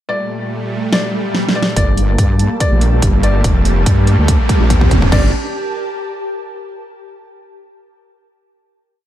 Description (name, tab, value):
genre	heavy wobble dubstep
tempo	143 BPM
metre	4/4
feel	half-time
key	G minor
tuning	A4 = 440 Hz
part	felt-muted upright piano	melody	0.1-5.3 s	D5	-24 LUFS	left 2 dB	ping-pong delay
part	supersaw chords	sustained chords	0.1-5.3 s	Bb2 to Bb3	-21 LUFS	right 2 dB	sidechain pumping, low-pass filter
part	ethereal airy pad	texture	1.5-6.8 s	G4 to A5	-25 LUFS	equal	ensemble chorus, built-in reverb, sidechain pumping
part	dubstep drum kit	drums	0.9-5.2 s	crash cymbal, hi-hat, snare drum	-20 LUFS	equal	high-pass filter on snare, studio reverb, high-pass filter on hats, high-pass filter on cymbals
part	swell and riser	sound effects	1.1-5.1 s	none	-24 LUFS	right 2 dB	none
part	wobble bass	bass	1.8-5.3 s	F1 to G2	-13 LUFS	equal	chorus, overdrive
part	electronic kick drum	drums	1.8-5.2 s	none	-15 LUFS	equal	studio reverb
room	digital ambience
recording	dark, warm production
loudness	-12 LUFS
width	side -12 dB against mid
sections	0.1-1.8 intro; 1.8-5.1 build; 5.1-6.8 final chord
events	swell 1.1-1.8; drum fill 1.3-1.8, 3.4-5.1; build-up 1.8-5.1; filter sweep on supersaw synth 1.8-5.1; riser 3.4-5.1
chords	0.1 Gmadd9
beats	| 0.09 0.51 0.93 1.35 | 1.76 2.19 2.60 3.02 | 3.44 3.86 4.28 4.70 | 5.12 5.54 5.96 6.38